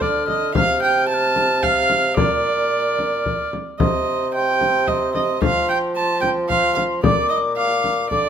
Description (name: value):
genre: classical, renaissance-style consort dance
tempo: 111 BPM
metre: 3/4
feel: straight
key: unclear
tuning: A4 = 440 Hz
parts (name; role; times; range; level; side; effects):
- mellow hollow alto recorder; melody; 0.0-8.3 s; C6 to G6; -26 LUFS; left 7 dB; none
- warm viola; second line; 0.0-8.3 s; D5 to A5; -20 LUFS; right 3 dB; none
- mellow bassoon; bass; 0.0-8.3 s; Bb2 to F3; -23 LUFS; right 1 dB; none
- frame drum; percussion; 0.0-8.3 s; none; -23 LUFS; left 3 dB; none
room: moderate large studio reverb, RT60 1.2 s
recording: none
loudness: -16 LUFS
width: side -8 dB against mid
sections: 0.0-8.3 A section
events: none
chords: 0.0 Dm; 0.6 F/C; 2.2 Bb; 3.8 Cm; 5.4 F5; 7.0 Bb